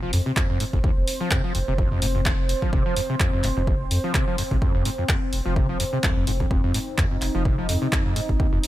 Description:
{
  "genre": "acid house",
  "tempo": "127 BPM",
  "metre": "4/4",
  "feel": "swing 55% on 16ths",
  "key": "unclear",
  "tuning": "A4 = 445 Hz",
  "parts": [
    { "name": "dark analog pad", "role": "sustained chords", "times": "0.0-8.7 s", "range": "C4 to C5", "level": "-30 LUFS", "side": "right 1 dB", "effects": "chorus, sidechain pumping" },
    { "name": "overdriven acid bass", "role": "riff", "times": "0.0-8.6 s", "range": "Eb2 to F3", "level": "-27 LUFS", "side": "equal", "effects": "distortion, wide subtle chorus, sidechain pumping, tape echo" },
    { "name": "saturated sub bass", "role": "bass", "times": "0.0-8.6 s", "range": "F1 to F2", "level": "-26 LUFS", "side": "equal", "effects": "sidechain pumping" },
    { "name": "punchy analog drum machine", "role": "drums", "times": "0.1-8.7 s", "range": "handclaps, hi-hat", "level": "-28 LUFS", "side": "equal", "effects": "none" },
    { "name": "electronic kick drum", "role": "drums", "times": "0.4-8.5 s", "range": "none", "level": "-24 LUFS", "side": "equal", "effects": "none" }
  ],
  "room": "little or no reverb",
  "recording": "none",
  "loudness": "-20 LUFS",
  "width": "side -14 dB against mid",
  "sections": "0.0-8.7 A section",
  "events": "none",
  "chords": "0.0 F5"
}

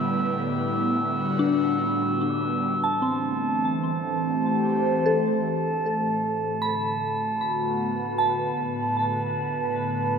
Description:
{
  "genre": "ambient",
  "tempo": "75 BPM",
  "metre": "4/4",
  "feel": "straight",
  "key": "A dorian",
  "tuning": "A4 = 436 Hz",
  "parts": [
    { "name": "airy breathy pad", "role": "sustained chords", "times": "0.0-10.2 s", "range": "A2 to C5", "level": "-26 LUFS", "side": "equal", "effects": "chorus, phaser" },
    { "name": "glass harmonica", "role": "texture", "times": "0.0-10.2 s", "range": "A5 to E6", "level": "-28 LUFS", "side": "right 2 dB", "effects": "none" },
    { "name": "soft synth bell", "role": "arpeggios", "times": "1.4-10.2 s", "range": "C4 to B5", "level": "-27 LUFS", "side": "left 1 dB", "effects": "chorus, phaser, tremolo, ping-pong delay" }
  ],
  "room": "wet cathedral reverb, RT60 6.1 s",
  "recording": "none",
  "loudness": "-22 LUFS",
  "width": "side -6 dB against mid",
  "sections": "0.0-2.8 A section; 2.8-10.2 B section",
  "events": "filter sweep on analog synth pad 2.8-10.2",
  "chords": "0.0 Em7/A; 2.8 Am7; 6.0 Bm7/A; 9.1 Em7/A (rootless)"
}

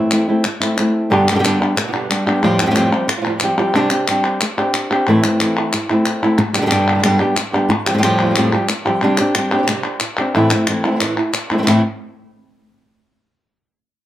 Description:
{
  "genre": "flamenco",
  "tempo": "182 BPM",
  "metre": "4/4",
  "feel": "straight",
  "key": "A minor",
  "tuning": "A4 = 439 Hz",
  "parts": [
    { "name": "flamenco guitar", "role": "melody", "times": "0.0-11.8 s", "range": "F2 to G4", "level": "-16 LUFS", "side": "equal", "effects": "plate reverb" },
    { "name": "flamenco guitar", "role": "stabs", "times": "0.0-11.8 s", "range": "F2 to G4", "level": "-23 LUFS", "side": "right 3 dB", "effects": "none" },
    { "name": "palmas hand claps", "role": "percussion", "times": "0.1-11.8 s", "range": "none", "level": "-20 LUFS", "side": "left 2 dB", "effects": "none" }
  ],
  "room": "wet studio reverb, RT60 0.5 s",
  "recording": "none",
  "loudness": "-14 LUFS",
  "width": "side -12 dB against mid",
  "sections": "0.0-1.1 A section; 1.1-11.7 A section; 11.7-13.0 B section",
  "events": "none",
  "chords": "0.0 Am; 1.1 G; 2.4 Fadd9; 3.7 Csus2; 5.1 Am; 6.4 G; 7.7 Fadd9; 9.0 Csus2; 10.3 Am"
}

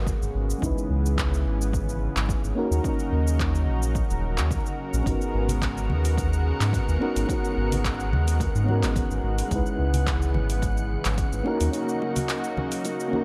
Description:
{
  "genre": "sunset chillout",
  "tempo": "108 BPM",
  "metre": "4/4",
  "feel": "swing 53% on 16ths",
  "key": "G# minor",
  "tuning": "A4 = 439 Hz",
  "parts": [
    { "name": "lush unison pad", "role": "sustained chords", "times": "0.0-13.2 s", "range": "C#3 to A#4", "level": "-34 LUFS", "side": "equal", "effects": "chorus" },
    { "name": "round analog bass", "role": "bass", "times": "0.0-11.7 s", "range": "D#1 to G#2", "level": "-27 LUFS", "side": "equal", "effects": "none" },
    { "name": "deep house drum kit", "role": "drums", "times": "0.1-13.1 s", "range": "handclaps, hi-hat, shaker", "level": "-36 LUFS", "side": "equal", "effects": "overdrive, studio reverb" },
    { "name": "electronic kick drum", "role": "drums", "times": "0.1-11.3 s", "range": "none", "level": "-32 LUFS", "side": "equal", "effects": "overdrive, studio reverb" },
    { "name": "mellow FM electric piano", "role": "accompaniment", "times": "0.6-13.2 s", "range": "G#3 to B4", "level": "-33 LUFS", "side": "equal", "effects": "chorus, tremolo, delay" },
    { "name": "wind-like tuned noise texture", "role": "texture", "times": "6.0-13.2 s", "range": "F#5 to F#6", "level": "-41 LUFS", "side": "equal", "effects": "built-in reverb" },
    { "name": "congas and bongos", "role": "percussion", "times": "5.5-13.2 s", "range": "none", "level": "-34 LUFS", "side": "equal", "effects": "none" }
  ],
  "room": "light reverb, digital ambience",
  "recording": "dark, warm production",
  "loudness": "-25 LUFS",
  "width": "mono",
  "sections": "0.0-13.2 A section",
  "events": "none",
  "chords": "0.0 G#m11; 0.6 C#m7; 2.6 D#m7; 5.1 G#m11; 9.5 C#m7; 11.5 D#m7"
}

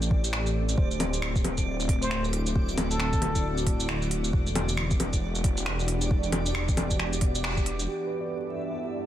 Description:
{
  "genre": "future garage",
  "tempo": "135 BPM",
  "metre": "4/4",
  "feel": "swing 60% on 16ths",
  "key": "unclear",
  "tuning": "A4 = 441 Hz",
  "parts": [
    { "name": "bell-like tine electric piano", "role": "accompaniment", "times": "0.0-4.3, 7.9-9.1 s", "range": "G4 to D5", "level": "-38 LUFS", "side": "right 2 dB", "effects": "medium stereo tremolo, sidechain pumping, low-pass filter, ping-pong delay" },
    { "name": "ethereal airy pad", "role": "sustained chords", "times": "0.0-9.1 s", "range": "G2 to A4", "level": "-33 LUFS", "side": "equal", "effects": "ensemble chorus, built-in reverb, phaser, sidechain pumping" },
    { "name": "swelling detuned saw bass", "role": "bass", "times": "0.0-7.9 s", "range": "D1 to A1", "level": "-30 LUFS", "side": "equal", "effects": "tube saturation, sidechain pumping" },
    { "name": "organic electronic drum kit", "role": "drums", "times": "0.0-7.9 s", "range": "bongos, finger snaps, hi-hat, shaker", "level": "-30 LUFS", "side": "equal", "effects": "soft clipping on snare" },
    { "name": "backwards swelling texture", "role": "texture", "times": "0.0-9.1 s", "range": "D5 to E5", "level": "-38 LUFS", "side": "right 2 dB", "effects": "built-in reverb" },
    { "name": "electronic kick drum", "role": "drums", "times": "0.1-7.6 s", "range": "none", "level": "-26 LUFS", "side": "equal", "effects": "none" },
    { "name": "trumpet with plunger mute", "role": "melody", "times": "2.0-3.5 s", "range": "A4 to C5", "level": "-34 LUFS", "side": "equal", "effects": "vintage 12-bit sampler grit, digital delay" }
  ],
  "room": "moderate recital hall reverb, RT60 1.4 s, digital ambience",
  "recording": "dense, heavily limited modern master, vinyl crackle",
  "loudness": "-25 LUFS",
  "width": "side -12 dB against mid",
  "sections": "0.0-7.9 A section; 7.9-9.1 B section",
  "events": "band accent 7.4; filter sweep on tine electric piano 7.9-9.1",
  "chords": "0.0 Am7; 0.8 D7; 4.3 Em9; 7.9 G6"
}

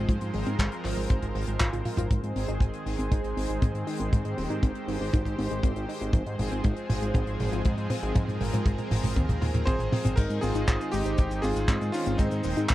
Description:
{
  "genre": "italo disco",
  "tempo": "119 BPM",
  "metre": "4/4",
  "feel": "straight",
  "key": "Ab major",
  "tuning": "A4 = 441 Hz",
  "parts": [
    { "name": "lush unison pad", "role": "sustained chords", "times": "0.0-12.7 s", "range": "Eb3 to G5", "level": "-33 LUFS", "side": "right 1 dB", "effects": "chorus" },
    { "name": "wide unison pluck", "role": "arpeggios", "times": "0.0-12.7 s", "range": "F3 to F4", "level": "-35 LUFS", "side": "left 2 dB", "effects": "tape echo" },
    { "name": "fat analog bass", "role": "bass", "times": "0.0-12.7 s", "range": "Eb1 to Ab2", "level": "-31 LUFS", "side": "equal", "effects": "none" },
    { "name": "damped 70s drum kit", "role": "drums", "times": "0.1-12.7 s", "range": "cabasa, crash cymbal, handclaps, hi-hat, toms", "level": "-32 LUFS", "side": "equal", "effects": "small room ambience" },
    { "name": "kick drum", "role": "drums", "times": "0.1-12.7 s", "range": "none", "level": "-24 LUFS", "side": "equal", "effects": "small room ambience" },
    { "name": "bright electric grand piano", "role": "melody", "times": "9.7-12.7 s", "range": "C4 to C5", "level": "-30 LUFS", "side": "equal", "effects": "tape echo" }
  ],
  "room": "little or no reverb",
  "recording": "dry, close 1970s-style studio recording",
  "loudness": "-25 LUFS",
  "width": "side -15 dB against mid",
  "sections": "0.0-2.1 A section; 2.1-10.2 B section; 10.2-12.7 C section",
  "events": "drum fill 1.7-2.1, 2.1-10.2; filter sweep on synth arpeggio sound 2.1-10.2",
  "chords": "0.0 Fm/Ab; 2.1 Ab; 6.1 Fm/Ab; 10.2 Ab"
}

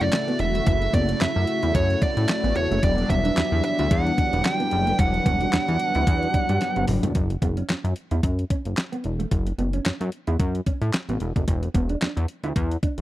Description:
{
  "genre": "early-eighties boogie funk",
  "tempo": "111 BPM",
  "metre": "4/4",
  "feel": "swing 56% on 16ths",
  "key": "unclear",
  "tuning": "A4 = 439 Hz",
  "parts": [
    { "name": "dark smooth lead guitar", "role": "melody", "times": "0.0-6.8 s", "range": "C#5 to G5", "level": "-25 LUFS", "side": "right 2 dB", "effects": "overdrive, slapback echo" },
    { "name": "mellow synth brass", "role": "accompaniment", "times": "0.0-7.1 s", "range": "C#3 to F#4", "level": "-27 LUFS", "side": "left 2 dB", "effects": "chorus" },
    { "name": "string machine, full ensemble", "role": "sustained chords", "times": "0.0-7.1 s", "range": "C#3 to A4", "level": "-34 LUFS", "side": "equal", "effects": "none" },
    { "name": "chorused synth bass", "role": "bass", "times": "0.0-13.0 s", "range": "E1 to A2", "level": "-24 LUFS", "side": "equal", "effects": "none" },
    { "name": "crisp 8-bit digital drum machine", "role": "drums", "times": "0.0-13.0 s", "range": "handclaps, hi-hat, kick drum, snare drum, toms", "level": "-24 LUFS", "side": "equal", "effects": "none" },
    { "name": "mellow electric guitar", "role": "riff", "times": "0.3-12.9 s", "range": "A3 to E4", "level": "-31 LUFS", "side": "right 3 dB", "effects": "lush chorus" }
  ],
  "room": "little or no reverb",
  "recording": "dry, close 1970s-style studio recording",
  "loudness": "-20 LUFS",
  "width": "side -15 dB against mid",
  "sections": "0.0-7.2 A section; 7.2-13.0 B section",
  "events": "drum fill 6.6-7.2",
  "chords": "0.0 F#m7; 2.8 Em9; 7.2 F#7(no3); 11.5 E7(no3)"
}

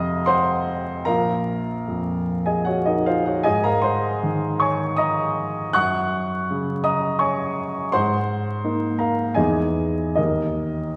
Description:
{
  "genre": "classical, impressionist solo piano",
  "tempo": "72-85 BPM",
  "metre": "3/4",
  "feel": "rubato",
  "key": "unclear",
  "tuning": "A4 = 442 Hz",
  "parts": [
    { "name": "warm baby grand piano", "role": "solo", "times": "0.0-11.0 s", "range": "Bb1 to Gb6", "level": "-22 LUFS", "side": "equal", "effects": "none" }
  ],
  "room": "wet scoring stage reverb, RT60 1.9 s",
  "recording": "recorded in a church or concert hall, vinyl crackle",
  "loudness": "-22 LUFS",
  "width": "mono",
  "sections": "0.0-11.0 A section",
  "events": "none",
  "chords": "0.0 F5; 1.1 Bbm7; 3.5 Ab9; 5.7 Gbadd9; 7.9 Ab69; 9.4 Emaj7; 10.2 Eb5"
}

